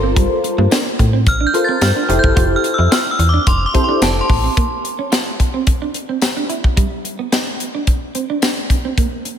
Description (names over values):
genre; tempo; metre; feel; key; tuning
early-eighties boogie funk; 109 BPM; 4/4; straight; F major; A4 = 440 Hz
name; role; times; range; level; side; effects
funky polysynth comp; accompaniment; 0.0-4.3 s; E4 to C5; -20 LUFS; left 2 dB; chorus, slapback echo
clean electric guitar; riff; 0.0-9.3 s; G3 to G4; -23 LUFS; right 6 dB; lush chorus
slap-like FM bass; bass; 0.0-4.5 s; F1 to A2; -16 LUFS; equal; none
tight funk drum kit; drums; 0.2-9.4 s; hi-hat, kick drum, snare drum; -17 LUFS; equal; none
tambourine; percussion; 0.7-8.6 s; none; -33 LUFS; left 7 dB; none
metallic FM bell; melody; 1.3-4.5 s; A5 to A6; -20 LUFS; right 1 dB; chorus, slapback echo, tape echo
room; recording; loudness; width
moderate lush hall reverb, RT60 2.7 s; big arena sound; -14 LUFS; side -9 dB against mid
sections
0.0-4.6 A section; 4.6-9.4 B section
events
synth bell solo 0.0-4.6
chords
0.0 Gm11; 2.1 Fmaj7; 4.6 Bbm; 5.4 Cadd9; 6.8 G; 7.6 Csus2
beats
| 0.17 0.72 1.27 1.82 | 2.37 2.92 3.47 4.02 | 4.57 5.12 5.67 6.22 | 6.77 7.32 7.87 8.42 | 8.97